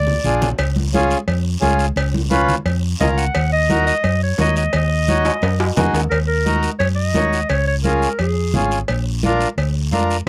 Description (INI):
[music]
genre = latin, cumbia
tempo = 174 BPM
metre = 4/4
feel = straight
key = Eb minor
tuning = A4 = 440 Hz
[part]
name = breathy clarinet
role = melody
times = 0.0-0.4, 3.0-8.7 s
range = Ab4 to Gb5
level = -23 LUFS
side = equal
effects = none
[part]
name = hollow-body short-scale fingered electric bass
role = bass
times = 0.0-10.3 s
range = Ab1 to Gb2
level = -22 LUFS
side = equal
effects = none
[part]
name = congas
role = percussion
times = 0.1-10.1 s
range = none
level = -27 LUFS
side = equal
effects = none
[part]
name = guiro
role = percussion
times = 0.2-10.3 s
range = none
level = -34 LUFS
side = equal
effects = none
[part]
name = accordion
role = accompaniment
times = 0.3-10.2 s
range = Db4 to Db5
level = -21 LUFS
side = equal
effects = none
[part]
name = cowbell and timbales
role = percussion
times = 0.6-9.8 s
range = none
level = -26 LUFS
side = equal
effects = none
[sound]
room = light reverb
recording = dry, close 1970s-style studio recording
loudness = -18 LUFS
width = mono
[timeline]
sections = 0.0-6.1 A section; 6.1-10.3 B section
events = drum fill 0.0-0.6, 5.2-6.1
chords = 0.0 Bb7; 0.6 Db; 3.3 Ebm; 7.5 Db; 8.9 Bb